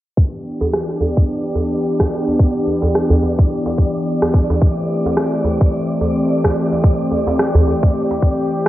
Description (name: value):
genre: organic downtempo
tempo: 108 BPM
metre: 4/4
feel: swing 58% on 16ths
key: E minor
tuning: A4 = 443 Hz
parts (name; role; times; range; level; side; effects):
- warm analog pad; sustained chords; 0.2-8.7 s; E3 to G4; -19 LUFS; left 1 dB; chorus, sidechain pumping
- electronic kick drum; drums; 0.2-8.4 s; none; -14 LUFS; equal; overdrive
- wind-like tuned noise texture; texture; 0.9-8.7 s; D5; -26 LUFS; right 3 dB; built-in reverb
- djembe; percussion; 0.6-8.2 s; none; -19 LUFS; equal; none
- electronic rim click; drums; 0.7-8.7 s; none; -20 LUFS; equal; overdrive
room: moderate lush hall reverb, RT60 1.9 s, digital ambience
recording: worn, warbling old tape, cassette tape, warbly pitch drift, low-pass filter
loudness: -14 LUFS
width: side -15 dB against mid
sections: 0.2-8.7 A section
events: filter sweep 0.2-8.7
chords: 0.2 Em7; 4.6 Am7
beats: | 0.17 0.73 1.28 1.84 | 2.40 2.95 3.51 4.06 | 4.62 5.17 5.73 6.29 | 6.84 7.40 7.95 8.51